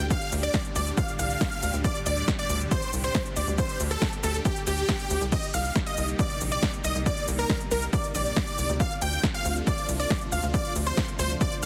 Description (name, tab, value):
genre	uplifting trance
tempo	138 BPM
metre	4/4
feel	straight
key	G minor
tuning	A4 = 440 Hz
part	supersaw pad	sustained chords	0.0-11.7 s	A2 to G4	-38 LUFS	equal	phaser, vintage 12-bit sampler grit, sidechain pumping
part	tight sequencer bass	bass	0.0-11.7 s	Bb1 to D2	-32 LUFS	equal	sidechain pumping
part	big-room dance drum kit	drums	0.0-11.7 s	crash cymbal, hi-hat, shaker, snare drum	-34 LUFS	equal	overdrive
part	big supersaw lead	melody	0.1-11.7 s	G4 to G5	-33 LUFS	equal	phaser, sidechain pumping, dub echo
part	unison pluck	second line	0.1-11.7 s	G4 to G5	-38 LUFS	equal	sidechain pumping
part	electronic kick drum	drums	0.1-11.5 s	none	-31 LUFS	equal	overdrive
room	light reverb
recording	heavily compressed radio sound, multiband compression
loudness	-27 LUFS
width	mono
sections	0.0-11.7 A section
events	none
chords	0.0 Gsus2; 5.3 Cm7; 8.8 Dm7